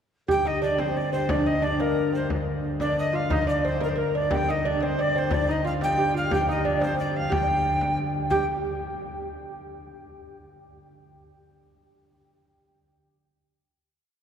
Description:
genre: medieval dance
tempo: 120 BPM (dotted quarters)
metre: 6/8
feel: straight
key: G minor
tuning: A4 = 441 Hz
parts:
  - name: breathy alto recorder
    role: melody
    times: 0.3-8.5 s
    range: Bb4 to G5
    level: -27 LUFS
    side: left 2 dB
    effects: none
  - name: lute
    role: second line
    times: 0.3-8.5 s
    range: Bb3 to G4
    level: -27 LUFS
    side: right 3 dB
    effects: none
  - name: pipe organ, flutes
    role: drone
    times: 0.3-8.3 s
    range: G2 to D3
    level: -31 LUFS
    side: left 1 dB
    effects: none
  - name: frame drum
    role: percussion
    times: 0.3-8.5 s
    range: none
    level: -32 LUFS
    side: left 1 dB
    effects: none
room: wet cathedral reverb, RT60 5.2 s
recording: band playing live in one room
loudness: -22 LUFS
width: side -8 dB against mid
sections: 0.3-8.3 A section; 8.3-9.3 final note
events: none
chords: none

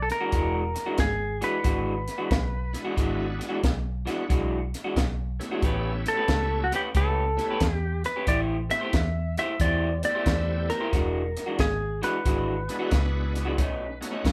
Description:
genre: electric blues shuffle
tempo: 91 BPM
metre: 4/4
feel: swing 66% on 8ths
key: E mixolydian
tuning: A4 = 440 Hz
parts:
  - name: clean lap steel guitar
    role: melody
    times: 0.0-14.0 s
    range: F#4 to E5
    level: -31 LUFS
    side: equal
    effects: none
  - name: vintage muted fingered electric bass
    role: bass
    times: 0.0-14.3 s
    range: E1 to F#2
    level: -32 LUFS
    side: equal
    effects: none
  - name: compact cocktail drum kit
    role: drums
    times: 0.1-14.3 s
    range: hi-hat, kick drum, snare drum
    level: -30 LUFS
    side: equal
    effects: none
  - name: electric guitar through a small old amp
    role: riff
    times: 0.2-14.3 s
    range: B2 to C5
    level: -32 LUFS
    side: equal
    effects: none
  - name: bright tonewheel organ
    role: accompaniment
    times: 2.7-14.3 s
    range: G#3 to G4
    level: -37 LUFS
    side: equal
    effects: slow rotary speaker, chorus vibrato
room: moderate studio reverb, RT60 0.6 s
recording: band playing live in one room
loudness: -26 LUFS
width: mono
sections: 0.0-14.3 A section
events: none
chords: 0.0 E9; 5.6 A9; 8.3 Am7; 10.9 E9; 13.6 B9

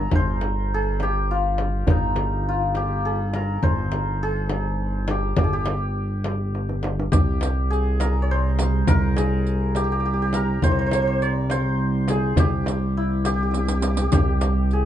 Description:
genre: Persian modal ensemble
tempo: 69 BPM (dotted quarters)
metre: 6/8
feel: straight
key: G dastgah shur, C dastgah homayun from 7.1 s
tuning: A4 = 441 Hz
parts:
  - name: santur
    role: melody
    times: 0.0-14.9 s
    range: Eb4 to Db5+45c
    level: -26 LUFS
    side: left 1 dB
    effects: none
  - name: smooth gliding synth bass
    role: bass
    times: 0.0-14.9 s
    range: G1 to C2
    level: -23 LUFS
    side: equal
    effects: none
  - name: frame drum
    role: percussion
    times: 0.1-14.6 s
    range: none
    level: -28 LUFS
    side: left 3 dB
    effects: none
  - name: tombak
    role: percussion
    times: 0.1-14.6 s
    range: none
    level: -24 LUFS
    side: right 1 dB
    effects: none
  - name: warm chamber cello section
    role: drone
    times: 7.1-14.9 s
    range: C2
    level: -29 LUFS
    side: right 3 dB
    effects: none
  - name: riq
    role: percussion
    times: 7.1-14.8 s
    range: none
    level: -34 LUFS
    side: right 6 dB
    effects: none
room: light reverb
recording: dark, warm production, nothing above 10.5 kHz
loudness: -20 LUFS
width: side -11 dB against mid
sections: 0.0-7.1 A section; 7.1-14.9 B section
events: drum fill 6.5-7.1, 13.5-14.1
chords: none

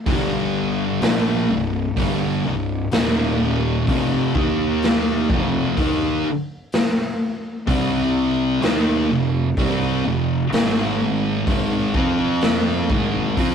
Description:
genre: stoner and doom metal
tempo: 63 BPM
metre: 4/4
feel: straight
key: unclear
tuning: A4 = 439 Hz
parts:
  - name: thick fuzz guitar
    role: riff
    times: 0.1-13.5 s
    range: C2 to F4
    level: -24 LUFS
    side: left 4 dB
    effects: distortion
  - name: thick fuzz guitar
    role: riff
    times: 0.1-13.5 s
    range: C2 to F4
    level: -22 LUFS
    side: right 3 dB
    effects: distortion
  - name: fuzz fingered electric bass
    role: bass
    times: 0.1-13.5 s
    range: C1 to F2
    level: -28 LUFS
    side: equal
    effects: overdrive, tube saturation
  - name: raw garage drum kit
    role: drums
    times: 0.1-13.5 s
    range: hi-hat, kick drum, snare drum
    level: -22 LUFS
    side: left 1 dB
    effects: none
room: light reverb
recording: rough rehearsal-room recording, warm saturation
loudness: -18 LUFS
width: side -7 dB against mid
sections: 0.0-13.5 A section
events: none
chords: 0.1 G5; 1.0 C5; 2.9 Eb5; 3.9 F5; 4.3 Eb5; 5.3 F5; 7.7 C5; 8.6 F5; 10.5 Ab5; 11.9 F5; 12.9 Ab5

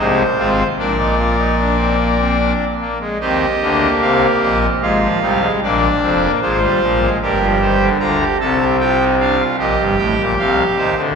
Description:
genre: classical, baroque-style 4-part fugue for pipe organ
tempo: 75 BPM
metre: 3/4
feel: straight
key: Eb major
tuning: A4 = 439 Hz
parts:
  - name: pipe organ, trumpet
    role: solo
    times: 0.0-11.1 s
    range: F1 to Bb5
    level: -13 LUFS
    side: equal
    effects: none
room: wet church reverb, RT60 3.3 s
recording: minimal, uncompressed stereo recording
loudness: -13 LUFS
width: side -6 dB against mid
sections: 0.0-3.2 A section; 3.2-11.2 B section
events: none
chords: 0.0 Ab/C; 0.8 Bb; 3.2 Eb; 4.8 Fm7/Ab; 5.6 Bb; 7.2 Eb/G; 8.0 Bb; 9.6 Gmadd9; 10.4 F5/C

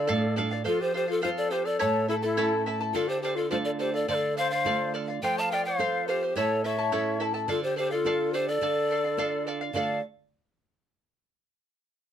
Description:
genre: andean folk, Andean ensemble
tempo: 106 BPM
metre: 2/4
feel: straight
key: D minor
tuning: A4 = 439 Hz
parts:
  - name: reedy pan flute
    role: melody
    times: 0.0-10.0 s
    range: A4 to A5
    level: -28 LUFS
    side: right 1 dB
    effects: none
  - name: breathy large quena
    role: second line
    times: 0.0-10.0 s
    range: E4 to F5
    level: -31 LUFS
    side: left 6 dB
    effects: none
  - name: charango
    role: accompaniment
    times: 0.0-10.0 s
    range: E4 to A5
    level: -31 LUFS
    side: equal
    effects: none
  - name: nylon-string guitar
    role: accompaniment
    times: 0.0-10.0 s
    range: A2 to A4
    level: -33 LUFS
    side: right 4 dB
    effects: none
room: little or no reverb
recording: close, detailed microphones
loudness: -25 LUFS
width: side -9 dB against mid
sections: 0.7-9.7 A section; 9.7-10.9 B section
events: none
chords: 0.0 Dm; 0.7 F; 1.8 A; 2.9 Dm; 5.2 F; 6.4 A; 7.5 Dm

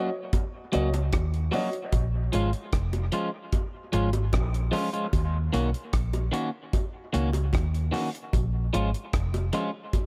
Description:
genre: dub reggae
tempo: 75 BPM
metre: 4/4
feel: straight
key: Eb minor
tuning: A4 = 442 Hz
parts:
  - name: electric guitar at the edge of break-up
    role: accompaniment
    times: 0.0-9.7 s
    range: Eb3 to Gb4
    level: -33 LUFS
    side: equal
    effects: subtle chorus, dub echo
  - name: dark upright piano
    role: stabs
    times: 0.0-1.7 s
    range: Gb4 to Eb5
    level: -36 LUFS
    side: equal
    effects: dub echo
  - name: deep reggae drum kit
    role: drums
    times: 0.3-10.1 s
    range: hi-hat, kick drum, rim click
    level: -30 LUFS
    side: equal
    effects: none
  - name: bongos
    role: percussion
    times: 0.3-10.1 s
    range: none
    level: -40 LUFS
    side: equal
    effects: dub echo
  - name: vintage muted fingered electric bass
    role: bass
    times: 0.8-9.5 s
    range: F1 to Eb2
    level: -29 LUFS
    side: equal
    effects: none
room: small room ambience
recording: none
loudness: -27 LUFS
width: mono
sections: 0.0-10.1 A section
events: none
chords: 0.0 Ebm7; 1.9 Bbm7; 5.1 Ebm7; 8.3 Bbm7

